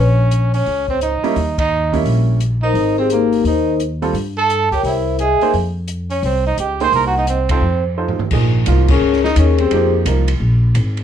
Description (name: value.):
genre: jazz, small-group swing and bop.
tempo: 172 BPM.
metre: 4/4.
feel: swing 64% on 8ths.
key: F minor.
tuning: A4 = 440 Hz.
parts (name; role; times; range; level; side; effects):
vibraphone with medium mallets; melody; 0.0-9.9 s; Bb3 to C6; -17 LUFS; left 2 dB; none.
clear trumpet; second line; 0.0-9.9 s; Bb3 to C5; -22 LUFS; right 4 dB; none.
upright bass; bass; 0.0-11.0 s; Ab1 to G2; -17 LUFS; equal; none.
open jazz drum kit; drums; 0.3-11.0 s; crash cymbal, hi-hat, kick drum, ride cymbal, snare drum, toms; -24 LUFS; equal; none.
clear baby grand piano; accompaniment; 1.2-10.3 s; F3 to C5; -21 LUFS; right 6 dB; none.
room: light reverb.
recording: none.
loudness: -14 LUFS.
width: side -9 dB against mid.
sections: 0.0-8.3 A section; 8.3-11.0 B section.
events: band accent 1.5, 7.5, 8.8; drum fill 8.0-8.3.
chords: 0.0 Bbmadd11; 1.4 Eb7b9; 2.7 Abmaj9; 4.1 G(b5, no3); 4.8 C7alt; 5.5 F5; 6.9 Ab13/C; 7.6 F7; 8.3 Bbm9; 9.7 Fm9; 10.4 Absus2.